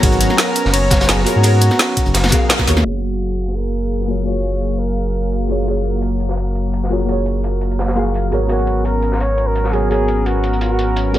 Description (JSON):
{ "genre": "liquid drum and bass", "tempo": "170 BPM", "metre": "4/4", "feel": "straight", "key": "F# major", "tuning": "A4 = 440 Hz", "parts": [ { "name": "mellow flugelhorn", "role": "melody", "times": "0.0-5.5, 8.5-11.1 s", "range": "F#4 to C#5", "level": "-22 LUFS", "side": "equal", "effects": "digital delay" }, { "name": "deep mellow chord stab", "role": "accompaniment", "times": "0.0-11.2 s", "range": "A#3 to A#5", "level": "-23 LUFS", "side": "equal", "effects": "chorus, dub echo" }, { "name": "warm analog pad", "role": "sustained chords", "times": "0.0-11.2 s", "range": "F#3 to A#5", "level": "-22 LUFS", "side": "left 1 dB", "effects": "chorus, sidechain pumping" }, { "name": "smooth synth bass", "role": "bass", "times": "0.0-11.2 s", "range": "F#1 to G#2", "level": "-18 LUFS", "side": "equal", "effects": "none" }, { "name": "crunchy breakbeat drum kit", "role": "drums", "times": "0.0-11.2 s", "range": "hi-hat, snare drum", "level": "-25 LUFS", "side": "equal", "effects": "high-pass filter on hats, low-pass filter on hats, high-pass filter on snare, low-pass filter on snare, high-pass filter on room, low-pass filter on room" }, { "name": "drum and bass drum kit", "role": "drums", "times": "0.0-11.2 s", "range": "hi-hat, ride cymbal, snare drum", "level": "-18 LUFS", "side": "equal", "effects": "overdrive" }, { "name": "electronic kick drum", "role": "drums", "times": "0.0-2.7 s", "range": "none", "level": "-18 LUFS", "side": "equal", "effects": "none" } ], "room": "light reverb, small room reverb", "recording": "low-pass filter", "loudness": "-14 LUFS", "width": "side -13 dB against mid", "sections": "0.0-2.9 A section; 2.9-11.2 B section", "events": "drop 0.0-2.9; band accent 2.5; filter sweep 2.9-11.2", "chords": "0.0 G#m11; 2.9 F#maj9; 8.3 G#m11", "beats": "| 0.03 0.38 0.73 1.08 | 1.44 1.79 2.14 2.50 | 2.85 3.20 3.56 3.91 | 4.26 4.62 4.97 5.32 | 5.67 6.03 6.38 6.73 | 7.08 7.44 7.79 8.14 | 8.50 8.85 9.20 9.56 | 9.91 10.26 10.62 10.97" }